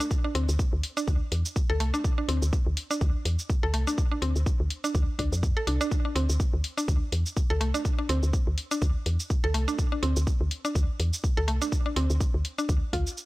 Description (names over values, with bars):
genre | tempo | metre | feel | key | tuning
minimal techno | 124 BPM | 4/4 | swing 56% on 16ths | D minor | A4 = 442 Hz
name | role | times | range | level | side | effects
mallet-like synth pluck | riff | 0.0-13.0 s | A3 to A4 | -31 LUFS | equal | chorus, sidechain pumping, analog delay
electronic shaker and hi-hat | drums | 0.0-13.3 s | none | -35 LUFS | equal | none
electronic kick drum | drums | 0.1-13.0 s | none | -26 LUFS | equal | none
woody FM bass | bass | 0.3-13.0 s | C2 to F2 | -26 LUFS | equal | tube saturation, sidechain pumping
room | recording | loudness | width
digital ambience | dry, gritty hardware recording, transformer saturation | -24 LUFS | side -19 dB against mid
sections
0.0-13.3 A section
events
none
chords
0.0 D7(no3)